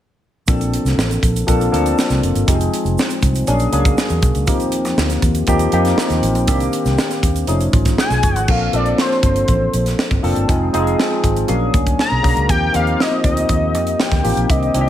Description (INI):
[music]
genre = polished 1980s jazz-funk pop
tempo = 120 BPM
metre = 4/4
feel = straight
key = Bb major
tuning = A4 = 445 Hz
[part]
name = barky tine electric piano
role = accompaniment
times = 0.5-14.9 s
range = Eb3 to C#5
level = -19 LUFS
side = left 1 dB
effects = overdrive, analog chorus
[part]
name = vintage muted fingered electric bass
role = bass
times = 0.5-14.9 s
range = F1 to F2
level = -19 LUFS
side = equal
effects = none
[part]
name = tight funk drum kit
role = drums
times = 0.5-14.9 s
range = crash cymbal, hi-hat, kick drum, snare drum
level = -19 LUFS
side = right 1 dB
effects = gated reverb
[part]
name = tube shaker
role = percussion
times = 0.5-8.5 s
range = none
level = -34 LUFS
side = right 11 dB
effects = none
[part]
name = fat analog lead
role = melody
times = 8.0-14.9 s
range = C5 to Bb5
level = -20 LUFS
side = left 1 dB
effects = chorus
[sound]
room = light reverb, small room ambience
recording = none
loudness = -14 LUFS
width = side -11 dB against mid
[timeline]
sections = 0.5-8.5 A section; 8.5-14.9 B section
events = none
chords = 0.5 Bbmaj9; 2.5 Fm7; 3.5 Bb7alt; 4.5 Eb69; 6.5 Cm9; 7.5 F7alt; 8.5 Bbmaj9; 10.5 Fm7; 11.5 Bb7alt; 12.5 Eb69